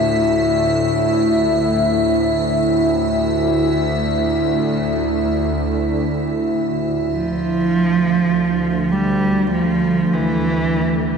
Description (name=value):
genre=dark ambient drone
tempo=free time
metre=none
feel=none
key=D minor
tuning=A4 = 440 Hz
part: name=bowed-like drone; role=drone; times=0.0-11.2 s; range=D2 to A2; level=-20 LUFS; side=equal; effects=built-in reverb
part: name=icy glass pad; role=texture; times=0.0-7.1 s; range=E4 to E5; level=-19 LUFS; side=equal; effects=chorus, built-in reverb
part: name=dark cello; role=melody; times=7.1-11.2 s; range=E3 to G3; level=-17 LUFS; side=right 3 dB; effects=ping-pong delay
part: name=sweeping resonant pad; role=sustained chords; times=7.1-11.2 s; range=D3 to E4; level=-32 LUFS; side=left 2 dB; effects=none
room=wet cathedral reverb, RT60 4.9 s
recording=cassette tape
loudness=-16 LUFS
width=side -6 dB against mid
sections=0.0-7.1 A section; 7.1-11.2 B section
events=filter sweep on synth drone 7.1-11.2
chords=0.0 Dmadd9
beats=free time